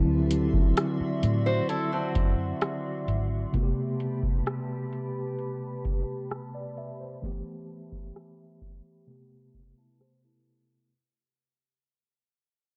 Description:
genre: contemporary R&B.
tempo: 65 BPM.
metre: 4/4.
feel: straight.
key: A dorian.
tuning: A4 = 440 Hz.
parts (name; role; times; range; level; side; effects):
mellow tine electric piano; accompaniment; 0.0-10.9 s; C3 to E5; -33 LUFS; equal; none.
glassy FM pad; sustained chords; 0.0-10.9 s; F#4 to C6; -41 LUFS; equal; ensemble chorus, built-in reverb.
vintage muted fingered electric bass; bass; 0.0-3.4 s; G#1 to A2; -30 LUFS; equal; none.
booming analog drum machine; drums; 0.3-10.2 s; hi-hat, kick drum, rim click; -29 LUFS; equal; none.
picked acoustic archtop guitar; arpeggios; 1.5-3.3, 9.8-10.9 s; C4 to C5; -33 LUFS; equal; none.
room: light reverb, digital ambience.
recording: dark, warm production, low-pass filter.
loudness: -29 LUFS.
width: mono.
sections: 0.0-10.9 A section.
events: filter sweep 0.0-10.9; fade-out 0.6-10.9.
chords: 0.0 D9; 3.5 Am9; 7.2 G69; 9.1 Am9.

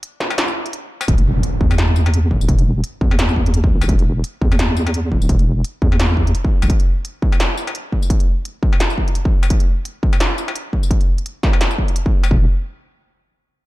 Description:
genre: half-time drum and bass.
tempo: 171 BPM.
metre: 4/4.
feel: swing 57% on 16ths, half-time.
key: E minor.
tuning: A4 = 439 Hz.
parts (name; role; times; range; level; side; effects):
industrial drum kit; drums; 0.0-12.3 s; hi-hat, snare drum, struck metal, tambourine; -22 LUFS; left 1 dB; none.
deep soft wobble bass; bass; 1.1-6.7, 12.3-12.5 s; D1 to E2; -16 LUFS; equal; chorus.
electronic kick drum; drums; 1.1-12.4 s; none; -16 LUFS; equal; distortion.
impact; sound effects; 1.1-2.5 s; none; -23 LUFS; equal; none.
room: little or no reverb.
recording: dark, warm production.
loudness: -15 LUFS.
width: side -18 dB against mid.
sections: 0.0-1.1 A section; 1.1-12.3 B section; 12.3-13.7 C section.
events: break 0.0-1.1; drop 0.0-1.1; impact 1.1-2.5.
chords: none.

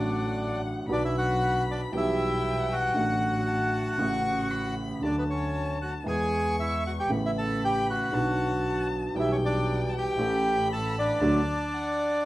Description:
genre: tango.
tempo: 116 BPM.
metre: 4/4.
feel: rubato.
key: D major.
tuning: A4 = 441 Hz.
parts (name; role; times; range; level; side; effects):
bandoneon; melody; 0.0-12.3 s; B3 to A5; -28 LUFS; equal; none.
rich violin; second line; 0.0-12.3 s; F#5 to C#6; -38 LUFS; left 4 dB; none.
warm upright piano; accompaniment; 0.0-11.4 s; A1 to A4; -29 LUFS; right 1 dB; none.
dark double bass; bass; 0.0-11.4 s; A1 to E2; -34 LUFS; equal; none.
room: wet studio reverb, RT60 0.6 s.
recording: rough home demo mix.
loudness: -25 LUFS.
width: side -16 dB against mid.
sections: 0.0-12.3 A section.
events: band accent 11.2-12.3.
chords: 0.0 D/A; 0.9 Bm; 1.9 Em/B; 3.0 D/A; 4.0 A; 5.0 D; 6.1 E; 7.1 Aadd9; 8.1 Bm; 9.2 Em/B; 10.2 A; 11.2 D.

